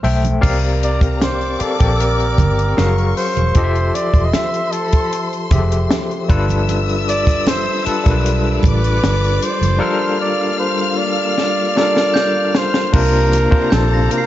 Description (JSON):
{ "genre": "lush 1970s-style soul", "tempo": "77 BPM", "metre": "4/4", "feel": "straight", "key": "unclear", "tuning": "A4 = 439 Hz", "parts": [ { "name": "breathy flugelhorn", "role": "melody", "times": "0.0-14.3 s", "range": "A4 to E5", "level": "-20 LUFS", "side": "right 1 dB", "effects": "none" }, { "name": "overdriven tine electric piano", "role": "accompaniment", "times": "0.0-14.3 s", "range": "C3 to G5", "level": "-20 LUFS", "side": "left 3 dB", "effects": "fast tremolo" }, { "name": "vintage muted fingered electric bass", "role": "bass", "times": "0.0-14.1 s", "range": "E1 to C2", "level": "-17 LUFS", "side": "equal", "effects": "none" }, { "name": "compact cocktail drum kit", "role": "drums", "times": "0.0-14.3 s", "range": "crash cymbal, hi-hat, kick drum, snare drum", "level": "-18 LUFS", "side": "equal", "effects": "none" }, { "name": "congas", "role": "percussion", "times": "0.0-13.9 s", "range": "none", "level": "-27 LUFS", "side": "right 6 dB", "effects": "none" }, { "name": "warm studio string section", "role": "second line", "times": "0.4-14.3 s", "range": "C#4 to F6", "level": "-25 LUFS", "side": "left 3 dB", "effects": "none" }, { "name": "glockenspiel with soft plastic mallets", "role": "texture", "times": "0.4-3.1, 12.1-14.3 s", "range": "E6 to C7", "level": "-30 LUFS", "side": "right 2 dB", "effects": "none" }, { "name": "phased string machine", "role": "sustained chords", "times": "6.7-14.3 s", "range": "C3 to D5", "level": "-29 LUFS", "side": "equal", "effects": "ensemble chorus, phaser" } ], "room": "little or no reverb", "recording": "nothing above 7.8 kHz", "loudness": "-14 LUFS", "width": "side -13 dB against mid", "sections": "0.4-12.9 A section; 12.9-14.3 B section", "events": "drum fill 11.4-12.9", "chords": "0.4 C7sus4; 2.8 F#maj7; 3.6 Fmaj7; 6.3 G7; 9.8 Gm7; 12.9 C9sus4", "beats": "| 0.43 1.21 1.99 2.77 | 3.56 4.34 5.12 5.90 | 6.68 7.47 8.25 9.03 | 9.81 10.59 11.38 12.16 | 12.94 13.72" }